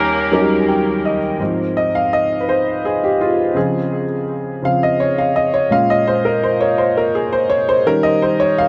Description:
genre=gospel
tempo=56 BPM (dotted quarters)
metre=6/8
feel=straight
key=Ab major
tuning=A4 = 440 Hz
part: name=clear horn section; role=melody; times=0.0-0.7 s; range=Bb3 to Bb4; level=-23 LUFS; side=equal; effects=dub echo
part: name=warm upright piano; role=accompaniment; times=0.0-8.7 s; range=Eb2 to G5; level=-17 LUFS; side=equal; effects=dub echo
room=light reverb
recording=echo-heavy mix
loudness=-17 LUFS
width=mono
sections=0.0-1.4 A section; 1.4-8.7 B section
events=upright piano fill 0.3-1.4; upright piano solo 1.4-8.7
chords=0.0 Eb7; 1.4 Ab6; 3.6 Dbmaj7; 5.7 Bbm7; 7.9 Eb7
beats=0.32 | 1.40 2.48 | 3.56 4.63 | 5.71 6.79 | 7.87

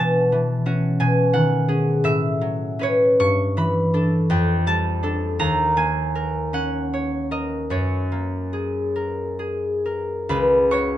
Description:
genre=classical, solo harp piece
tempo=42-59 BPM (dotted quarters)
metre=6/8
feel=rubato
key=unclear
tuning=A4 = 440 Hz
part: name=concert harp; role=solo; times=0.0-11.0 s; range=C#2 to C#6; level=-19 LUFS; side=equal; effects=none
room=light reverb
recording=nothing above 10.4 kHz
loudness=-19 LUFS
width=side -12 dB against mid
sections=0.0-10.3 A section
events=none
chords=0.0 F#m7/B; 1.0 B69; 2.0 A69; 3.2 G69; 4.3 F69; 5.4 D#m7; 7.7 F#add9; 10.3 C#7sus4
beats=| 1.01 2.04 | 3.20 4.29 | 5.38 6.51 | 7.70 8.95 | 10.30

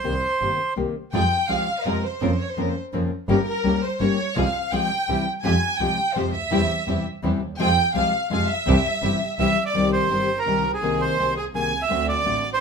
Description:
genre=tango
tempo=167 BPM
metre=3/4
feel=rubato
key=F harmonic minor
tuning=A4 = 440 Hz
part: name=bandoneon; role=melody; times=0.0-0.7, 9.4-12.6 s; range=Ab4 to Ab5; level=-23 LUFS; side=right 4 dB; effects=none
part: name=warm symphonic violin section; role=second line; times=0.0-12.6 s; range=Ab4 to Ab5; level=-25 LUFS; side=equal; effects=none
part: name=nylon-string guitar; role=accompaniment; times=0.0-12.4 s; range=C3 to Ab4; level=-25 LUFS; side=left 5 dB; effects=none
part: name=clear double bass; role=bass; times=0.0-12.6 s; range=G1 to F2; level=-27 LUFS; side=right 3 dB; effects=none
part: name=dark chamber string section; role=stabs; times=1.1-12.6 s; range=Ab3 to Bb4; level=-30 LUFS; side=right 2 dB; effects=none
room=moderate studio reverb, RT60 0.7 s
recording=minimal, uncompressed stereo recording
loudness=-20 LUFS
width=side -6 dB against mid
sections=0.0-1.1 A section; 1.1-9.7 B section; 9.7-12.6 A section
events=violin section solo 1.1-9.7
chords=0.0 Cm7; 1.1 Fm; 2.2 Bbmadd9/F; 3.3 Gdim; 4.4 Fm/C; 5.1 C; 5.4 Fmadd9; 6.5 C/E; 7.6 Fm; 8.7 C; 9.7 Cm; 10.8 Abadd9/C; 11.9 D7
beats=| 0.05 0.41 0.77 | 1.13 1.49 1.85 | 2.21 2.57 2.93 | 3.29 3.65 4.00 | 4.36 4.72 5.08 | 5.44 5.80 6.16 | 6.52 6.88 7.24 | 7.59 7.95 8.31 | 8.67 9.03 9.39 | 9.75 10.11 10.46 | 10.82 11.18 11.54 | 11.90 12.26

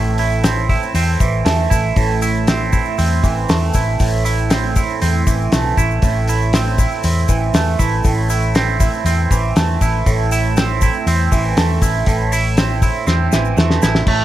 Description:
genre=psychedelic rock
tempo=119 BPM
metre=4/4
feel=straight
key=A minor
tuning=A4 = 440 Hz
part: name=twangy electric guitar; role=riff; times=0.0-14.2 s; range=A2 to E4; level=-18 LUFS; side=right 5 dB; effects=phaser
part: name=hollow-body short-scale fingered electric bass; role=bass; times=0.0-14.2 s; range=A1 to E2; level=-18 LUFS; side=left 1 dB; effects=none
part: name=cloth-damped thuddy drum kit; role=drums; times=0.2-14.2 s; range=crash cymbal, hi-hat, kick drum, snare drum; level=-18 LUFS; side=left 1 dB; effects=none
part: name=tube shaker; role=percussion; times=0.3-13.9 s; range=none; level=-31 LUFS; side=left 20 dB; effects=none
room=little or no reverb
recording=none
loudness=-14 LUFS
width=side -13 dB against mid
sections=0.0-14.1 A section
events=drum fill 13.1-14.1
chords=0.0 Am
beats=0.44 0.95 1.46 | 1.97 2.48 2.99 3.49 | 4.00 4.51 5.02 5.52 | 6.03 6.54 7.04 7.55 | 8.05 8.55 9.06 9.56 | 10.07 10.57 11.07 11.57 | 12.07 12.57 13.07 13.57 | 14.07

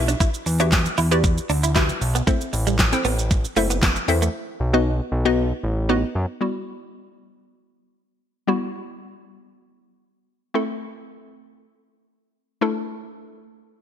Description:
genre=dance-pop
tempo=116 BPM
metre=4/4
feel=straight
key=E minor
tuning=A4 = 441 Hz
part: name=hollow square pluck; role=accompaniment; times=0.0-13.8 s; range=G3 to G5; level=-24 LUFS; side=left 2 dB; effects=chorus, sidechain pumping
part: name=fat analog bass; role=bass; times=0.0-6.3 s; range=F#1 to F#2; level=-22 LUFS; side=equal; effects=sidechain pumping
part: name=direct-recorded clean electric guitar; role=riff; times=0.1-4.3 s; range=G3 to E4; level=-27 LUFS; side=right 4 dB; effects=lush chorus
part: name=pop drum kit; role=drums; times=0.1-4.3 s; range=handclaps, hi-hat, kick drum, shaker, snare drum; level=-22 LUFS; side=equal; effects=gated reverb
room=light reverb, digital ambience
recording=bright 1980s-style digital production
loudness=-19 LUFS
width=side -9 dB against mid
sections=0.0-6.4 A section; 6.4-13.8 B section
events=drop 0.0-6.4; silent gap 4.3-6.4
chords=0.0 Emadd9; 2.3 Am; 4.3 B; 6.4 Emadd9; 10.5 Am; 12.6 Dsus2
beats=| 0.20 0.72 1.24 1.76 | 2.27 2.79 3.31 3.83 | 4.34 4.86 5.38 5.89 | 6.41 6.93 7.45 7.96 | 8.48 9.00 9.52 10.03 | 10.55 11.07 11.58 12.10 | 12.62 13.14 13.65

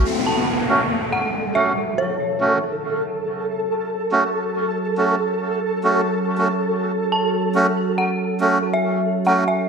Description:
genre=dubstep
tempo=140 BPM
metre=4/4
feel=swing 53% on 16ths, half-time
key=F# minor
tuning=A4 = 442 Hz
part: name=deep dark ambient pad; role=sustained chords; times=0.0-9.7 s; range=F#4 to A5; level=-26 LUFS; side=right 2 dB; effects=chorus, built-in reverb
part: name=downlifter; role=sound effects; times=0.1-3.5 s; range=none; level=-24 LUFS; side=left 1 dB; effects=none
part: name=flickering grainy texture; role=texture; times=0.9-9.7 s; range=A4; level=-24 LUFS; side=right 1 dB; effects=built-in reverb
part: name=dark detuned synth bell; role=melody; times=0.3-2.4, 7.1-9.7 s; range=C#5 to A5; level=-24 LUFS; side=equal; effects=chorus, phaser, dub echo
part: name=melodica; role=stabs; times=0.7-9.4 s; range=A3 to F#4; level=-22 LUFS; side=right 2 dB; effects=low-pass filter, dub echo
room=moderate echo chamber reverb, RT60 1.8 s, digital ambience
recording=none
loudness=-18 LUFS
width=side -5 dB against mid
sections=0.1-9.7 A section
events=filter sweep on ambient pad 0.1-9.7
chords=0.1 F#m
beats=| 0.05 0.48 0.91 1.34 | 1.76 2.19 2.62 3.05 | 3.48 3.91 4.34 4.76 | 5.19 5.62 6.05 6.48 | 6.91 7.34 7.76 8.19 | 8.62 9.05 9.48

